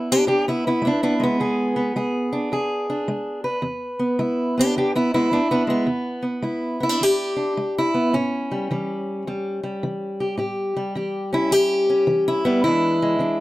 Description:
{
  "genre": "acoustic country blues, solo or duo",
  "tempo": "107 BPM",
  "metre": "4/4",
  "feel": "swing 65% on 8ths",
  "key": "E mixolydian",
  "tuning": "A4 = 440 Hz",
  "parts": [
    { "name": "fingerpicked steel-string acoustic guitar", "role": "solo", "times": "0.0-13.4 s", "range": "E2 to B4", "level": "-20 LUFS", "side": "equal", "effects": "none" }
  ],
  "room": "little or no reverb",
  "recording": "close, detailed microphones",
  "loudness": "-20 LUFS",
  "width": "side -17 dB against mid",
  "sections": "0.0-13.4 A section",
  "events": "none",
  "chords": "0.0 E7; 8.1 A7; 12.6 E7"
}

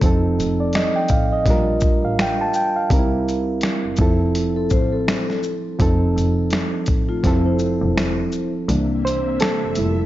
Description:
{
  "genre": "lo-fi hip hop",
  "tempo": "83 BPM",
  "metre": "4/4",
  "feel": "swing 58% on 16ths",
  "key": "F major",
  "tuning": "A4 = 440 Hz",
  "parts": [
    { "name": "reed electric piano", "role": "accompaniment", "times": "0.0-10.1 s", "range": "E3 to A5", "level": "-20 LUFS", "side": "right 2 dB", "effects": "overdrive, cassette tape, low-pass filter" },
    { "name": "clear double bass", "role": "bass", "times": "0.0-10.1 s", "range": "E1 to C2", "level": "-23 LUFS", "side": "equal", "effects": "none" },
    { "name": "dusty soul sampler-style drum kit", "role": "drums", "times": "0.0-10.0 s", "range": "finger snaps, hi-hat, kick drum, shaker, snare drum", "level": "-21 LUFS", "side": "equal", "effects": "overdrive" },
    { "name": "vibraphone with soft mallets", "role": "second line", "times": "4.6-8.5 s", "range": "A3 to C5", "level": "-28 LUFS", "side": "left 5 dB", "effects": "low-pass filter, ping-pong delay" },
    { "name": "string machine, violas", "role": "sustained chords", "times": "8.7-10.1 s", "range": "C3 to E5", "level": "-26 LUFS", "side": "left 4 dB", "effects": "phaser, ensemble chorus, low-pass filter" }
  ],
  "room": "moderate plate reverb, RT60 1.8 s, digital ambience",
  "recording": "dreamy mix soaked in reverb, cassette tape, nothing above 7.5 kHz",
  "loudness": "-17 LUFS",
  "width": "side -14 dB against mid",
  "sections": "0.0-8.7 A section; 8.7-10.1 A section",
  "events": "kick muted 8.7-10.1; reed electric piano solo 8.7-10.1",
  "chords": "0.0 F7; 1.5 Bb6; 2.9 C7; 4.0 Fmaj7; 5.8 F7; 7.2 Fmaj7; 8.7 C7"
}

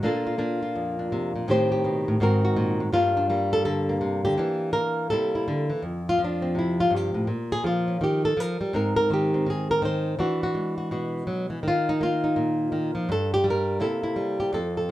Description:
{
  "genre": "solo jazz",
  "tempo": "166 BPM",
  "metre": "4/4",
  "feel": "swing 64% on 8ths",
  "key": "unclear",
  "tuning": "A4 = 440 Hz",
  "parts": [
    { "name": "flamenco guitar", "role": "solo", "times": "0.0-14.9 s", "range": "F2 to C5", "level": "-22 LUFS", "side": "equal", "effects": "none" }
  ],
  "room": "moderate large studio reverb, RT60 0.9 s",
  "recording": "band playing live in one room",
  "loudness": "-22 LUFS",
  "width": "side -14 dB against mid",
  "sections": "0.0-5.8 A section; 5.8-14.9 B section",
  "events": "nylon-string guitar solo 5.8-14.9",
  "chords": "0.0 Bbmaj9; 1.5 Am7b5; 2.2 G#9; 2.9 Gm9; 4.4 Em7b5; 5.1 C13; 5.8 Fsus2; 7.3 Bbm; 8.0 Eb; 8.7 Abmaj9; 10.2 E9; 11.6 Eb5; 13.1 N.C.; 13.8 C6"
}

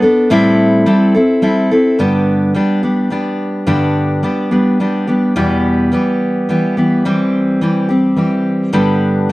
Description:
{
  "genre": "acoustic folk duo or small band",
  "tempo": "107 BPM",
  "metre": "3/4",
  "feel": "straight",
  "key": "unclear",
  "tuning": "A4 = 440 Hz",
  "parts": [
    { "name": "picked steel-string acoustic guitar", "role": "solo", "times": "0.0-9.3 s", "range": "E2 to A4", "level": "-11 LUFS", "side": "equal", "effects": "none" }
  ],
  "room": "light reverb",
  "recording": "dry, close 1970s-style studio recording",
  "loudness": "-11 LUFS",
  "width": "side -19 dB against mid",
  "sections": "0.0-2.0 A section; 2.0-8.7 B section",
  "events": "none",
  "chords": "0.3 Am7; 2.0 G; 5.4 Em; 7.1 C/E; 8.7 G"
}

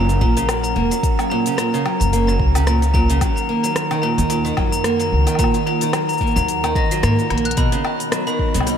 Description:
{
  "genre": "folktronica",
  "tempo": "110 BPM",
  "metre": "4/4",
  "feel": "swing 56% on 16ths",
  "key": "unclear",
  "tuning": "A4 = 438 Hz",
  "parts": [
    { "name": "glockenspiel with hard plastic mallets", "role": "second line", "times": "0.0-8.8 s", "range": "A#5 to A#6", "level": "-24 LUFS", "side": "left 3 dB", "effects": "ping-pong delay" },
    { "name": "warbly tape-like pad", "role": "sustained chords", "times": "0.0-8.8 s", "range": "D#3 to F#5", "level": "-24 LUFS", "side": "right 3 dB", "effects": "chorus, built-in reverb" },
    { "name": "picked acoustic archtop guitar", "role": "arpeggios", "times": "0.0-8.8 s", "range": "A#2 to A#3", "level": "-22 LUFS", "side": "right 1 dB", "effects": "ping-pong delay" },
    { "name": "upright bass", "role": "bass", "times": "0.0-8.8 s", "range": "E1 to G#2", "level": "-19 LUFS", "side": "equal", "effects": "none" },
    { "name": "organic electronic drum kit", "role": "drums", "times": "0.1-8.8 s", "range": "cabasa, hi-hat, rim click, woodblock", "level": "-26 LUFS", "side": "left 2 dB", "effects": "none" },
    { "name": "electronic kick drum", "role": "drums", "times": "0.2-8.5 s", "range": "none", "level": "-20 LUFS", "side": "equal", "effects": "none" }
  ],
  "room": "moderate huge ambient reverb, RT60 3.6 s",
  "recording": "dreamy mix soaked in reverb",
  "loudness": "-16 LUFS",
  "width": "side -8 dB against mid",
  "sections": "0.0-7.6 A section; 7.6-8.8 B section",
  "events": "kick drops out 7.0-7.6; drum fill 7.3",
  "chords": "0.0 F#; 3.2 D#m; 7.6 Badd9"
}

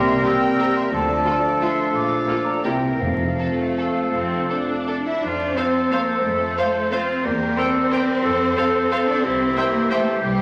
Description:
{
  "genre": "classical, orchestral ballroom waltz",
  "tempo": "150-196 BPM",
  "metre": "3/4",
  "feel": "rubato",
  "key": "F major",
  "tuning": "A4 = 438 Hz",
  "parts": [
    { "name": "clear clarinet", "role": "second line", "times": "0.0-10.4 s", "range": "C4 to C5", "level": "-30 LUFS", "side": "equal", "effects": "none" },
    { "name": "clear oboe", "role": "second line", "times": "0.0-10.4 s", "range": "E4 to C5", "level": "-28 LUFS", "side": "equal", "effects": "none" },
    { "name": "small flute group", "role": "second line", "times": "0.0-10.4 s", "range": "C5 to E6", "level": "-30 LUFS", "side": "equal", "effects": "none" },
    { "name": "warm studio violin section", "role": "second line", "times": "0.0-10.4 s", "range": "G4 to G5", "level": "-34 LUFS", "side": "equal", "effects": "none" },
    { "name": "warm bassoon", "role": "accompaniment", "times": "0.0-10.4 s", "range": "E3 to G3", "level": "-32 LUFS", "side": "equal", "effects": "none" },
    { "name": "mellow French horn section", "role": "sustained chords", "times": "0.0-10.0 s", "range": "A3 to E5", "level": "-30 LUFS", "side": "equal", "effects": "none" },
    { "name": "warm symphonic cello section", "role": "bass", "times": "0.0-10.4 s", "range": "F2 to E4", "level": "-27 LUFS", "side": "equal", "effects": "none" },
    { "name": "warm symphonic double bass section", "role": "bass", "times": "0.0-10.4 s", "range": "F1 to F2", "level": "-36 LUFS", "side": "equal", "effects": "none" },
    { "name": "timpani", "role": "percussion", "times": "0.0-0.4, 3.0-3.5 s", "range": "F2 to C3", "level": "-32 LUFS", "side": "equal", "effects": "none" },
    { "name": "rich symphonic violin section", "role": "melody", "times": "0.2-10.0 s", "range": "G4 to G5", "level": "-35 LUFS", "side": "equal", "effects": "none" },
    { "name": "rich symphonic viola section", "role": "accompaniment", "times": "0.2-10.0 s", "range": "A3 to E5", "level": "-31 LUFS", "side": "equal", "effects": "none" }
  ],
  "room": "wet recital hall reverb, RT60 1.6 s",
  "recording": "vinyl crackle",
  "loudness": "-21 LUFS",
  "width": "mono",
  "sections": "0.0-5.2 A section; 5.2-10.4 B section",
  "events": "none",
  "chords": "0.0 C7; 0.9 Dm; 1.9 Bbmaj7; 2.6 C7; 3.0 F; 7.3 C7/E; 8.2 F; 9.2 C"
}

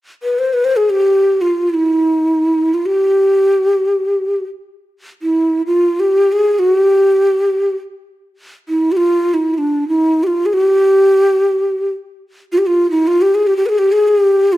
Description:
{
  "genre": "Turkish makam ensemble",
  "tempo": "free time",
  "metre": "none",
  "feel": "none",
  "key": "G makam hicaz",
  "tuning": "A4 = 438 Hz",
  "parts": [
    { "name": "breathy mellow ney", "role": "solo", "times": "0.2-14.6 s", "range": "D4 to C5", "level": "-12 LUFS", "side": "equal", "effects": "none" }
  ],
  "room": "moderate recital hall reverb, RT60 1.4 s",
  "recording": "close, detailed microphones",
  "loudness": "-12 LUFS",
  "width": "side -15 dB against mid",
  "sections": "0.0-14.6 A section",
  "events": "none",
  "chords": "none"
}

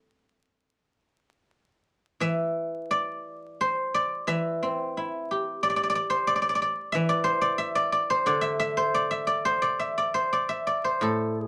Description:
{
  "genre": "chinese traditional, Chinese solo plucked strings",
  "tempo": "89 BPM",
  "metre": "4/4",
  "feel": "uneven beats, rubato",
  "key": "unclear",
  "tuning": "A4 = 441 Hz",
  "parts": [
    { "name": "guzheng", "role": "solo", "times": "0.0-11.5 s", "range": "A2 to A5", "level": "-27 LUFS", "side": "equal", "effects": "none" }
  ],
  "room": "moderate small room reverb, RT60 0.5 s",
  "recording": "vinyl crackle",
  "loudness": "-27 LUFS",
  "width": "mono",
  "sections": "0.0-1.5 A section; 1.5-11.5 B section",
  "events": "none",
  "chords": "none"
}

